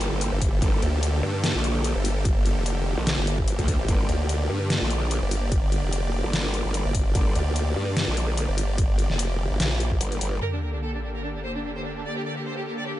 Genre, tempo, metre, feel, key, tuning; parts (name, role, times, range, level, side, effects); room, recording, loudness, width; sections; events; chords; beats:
heavy wobble dubstep; 147 BPM; 4/4; swing 54% on 16ths, half-time; G minor; A4 = 440 Hz
supersaw chords; sustained chords; 0.0-13.0 s; D3 to D5; -30 LUFS; equal; sidechain pumping, low-pass filter
growl bass; bass; 0.0-10.4 s; G1 to G2; -25 LUFS; equal; chorus, overdrive
dubstep drum kit; drums; 0.0-10.3 s; hi-hat, snare drum; -28 LUFS; left 1 dB
formant-sweep wobble bass; bass; 0.3-10.0 s; F1 to D2; -25 LUFS; equal; chorus, overdrive
electronic kick drum; drums; 0.4-10.0 s; -24 LUFS; equal
rich symphonic violin section; melody; 10.4-13.0 s; D4 to D5; -32 LUFS; right 1 dB; dub echo
sub drop; sound effects; 10.4-12.0 s; -32 LUFS; equal
little or no reverb; nothing above 10.7 kHz; -22 LUFS; side -14 dB against mid
0.0-10.4 A section; 10.4-13.0 B section
drop 0.0-10.4; break 10.0-10.4; impact 10.4-12.0
0.0 Gmadd9
0.21 | 0.62 1.03 1.44 1.84 | 2.25 2.66 3.07 3.48 | 3.88 4.29 4.70 5.11 | 5.52 5.93 6.33 6.74 | 7.15 7.56 7.97 8.38 | 8.78 9.19 9.60 10.01 | 10.42 10.82 11.23 11.64 | 12.05 12.46 12.87